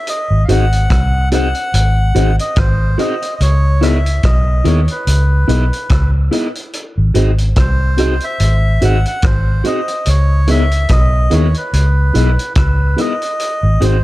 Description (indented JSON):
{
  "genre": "lovers rock reggae",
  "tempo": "72 BPM",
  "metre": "4/4",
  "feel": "swing 57% on 16ths",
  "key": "C# minor",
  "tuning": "A4 = 441 Hz",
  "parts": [
    { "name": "melodica", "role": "melody", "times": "0.0-14.0 s", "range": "B4 to F#5", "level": "-20 LUFS", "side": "equal", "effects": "tape echo" },
    { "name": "vintage drum kit", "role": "drums", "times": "0.1-14.0 s", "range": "hi-hat, kick drum, rim click", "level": "-18 LUFS", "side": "equal", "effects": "none" },
    { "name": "vintage muted fingered electric bass", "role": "bass", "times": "0.3-14.0 s", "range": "G#1 to D#2", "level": "-12 LUFS", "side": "equal", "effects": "none" },
    { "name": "mellow tine electric piano", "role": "accompaniment", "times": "0.5-14.0 s", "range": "B3 to G#4", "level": "-20 LUFS", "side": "left 4 dB", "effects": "medium stereo tremolo" },
    { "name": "electric guitar at the edge of break-up", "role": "stabs", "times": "0.5-14.0 s", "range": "E4 to D#5", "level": "-23 LUFS", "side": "right 3 dB", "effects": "harmonic tremolo" }
  ],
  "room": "studio reverb",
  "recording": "dark, warm production",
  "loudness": "-11 LUFS",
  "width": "side -17 dB against mid",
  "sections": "0.0-14.0 A section",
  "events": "none",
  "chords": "0.1 G#7; 3.4 C#m9; 6.7 G#7; 10.1 C#m9; 13.4 G#7",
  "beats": "| 0.07 0.90 1.74 2.57 | 3.40 4.23 5.07 5.90 | 6.73 7.56 8.40 9.23 | 10.06 10.89 11.73 12.56 | 13.39"
}